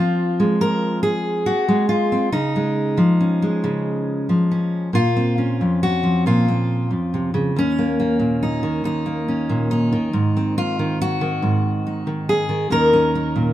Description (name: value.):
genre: folk, solo fingerstyle acoustic guitar.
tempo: 46 BPM (dotted quarters).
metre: 6/8.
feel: rubato.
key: Eb dorian.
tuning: A4 = 440 Hz.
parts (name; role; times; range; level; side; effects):
fingerpicked steel-string acoustic guitar; solo; 0.0-13.5 s; Eb2 to Bb4; -17 LUFS; equal; none.
room: light reverb.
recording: minimal, uncompressed stereo recording.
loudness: -17 LUFS.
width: side -13 dB against mid.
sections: 0.0-4.9 A section; 4.9-13.5 B section.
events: none.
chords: 0.0 Fm; 2.3 Dbadd9; 4.9 Bbmadd9; 7.6 Eb5; 10.1 Ab; 12.7 Eb5.